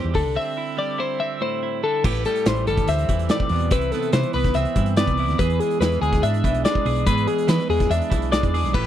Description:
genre	math rock and midwest emo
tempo	143 BPM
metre	4/4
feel	straight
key	unclear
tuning	A4 = 442 Hz
part	twelve-string electric guitar	accompaniment	0.0-8.9 s	E2 to G#4	-26 LUFS	right 12 dB	none
part	twelve-string electric guitar	arpeggios	0.0-8.9 s	G#4 to E5	-23 LUFS	left 5 dB	none
part	hollow-body short-scale fingered electric bass	bass	0.0-8.9 s	G1 to E3	-23 LUFS	equal	none
part	loose indie drum kit	drums	0.1-8.9 s	crash cymbal, hi-hat, kick drum, snare drum	-24 LUFS	equal	none
room	small room ambience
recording	none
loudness	-19 LUFS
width	side -11 dB against mid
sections	0.0-2.0 A section; 2.0-8.9 B section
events	break 0.4-2.0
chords	0.2 D9sus4; 2.0 Am7; 3.7 Cmaj7; 5.4 E7

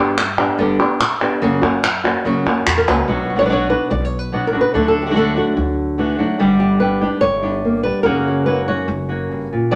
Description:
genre	flamenco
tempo	144 BPM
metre	4/4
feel	straight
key	B harmonic minor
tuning	A4 = 440 Hz
part	flamenco guitar	melody	0.0-9.8 s	F#2 to D5	-20 LUFS	equal	none
part	upright bass	bass	0.0-9.8 s	F#1 to G2	-28 LUFS	equal	none
part	palmas hand claps	percussion	0.2-3.1 s	none	-21 LUFS	equal	none
part	flamenco guitar	stabs	3.1-9.8 s	B2 to G4	-21 LUFS	equal	none
room	wet studio reverb, RT60 0.8 s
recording	none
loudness	-17 LUFS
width	mono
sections	0.0-3.1 A section; 3.1-9.8 B section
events	none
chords	0.0 G; 1.4 F#; 3.1 Bm; 4.7 D; 6.4 G; 8.1 F#

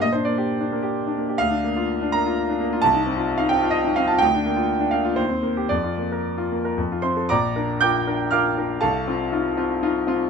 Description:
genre	classical, romantic character piece for solo piano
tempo	109-133 BPM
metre	3/4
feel	rubato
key	Bb major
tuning	A4 = 440 Hz
part	bright grand piano	solo	0.0-10.3 s	Bb1 to G6	-20 LUFS	equal	none
room	little or no reverb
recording	close, detailed microphones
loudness	-20 LUFS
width	side -6 dB against mid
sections	0.0-7.3 A section; 7.3-10.3 B section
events	none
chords	0.0 Gm/Bb; 1.4 Bb/D; 2.8 F7/C; 4.2 Bb/D; 5.2 Cm7/Eb; 5.7 Bb/F; 6.8 F; 7.3 Bb; 8.8 F7/C

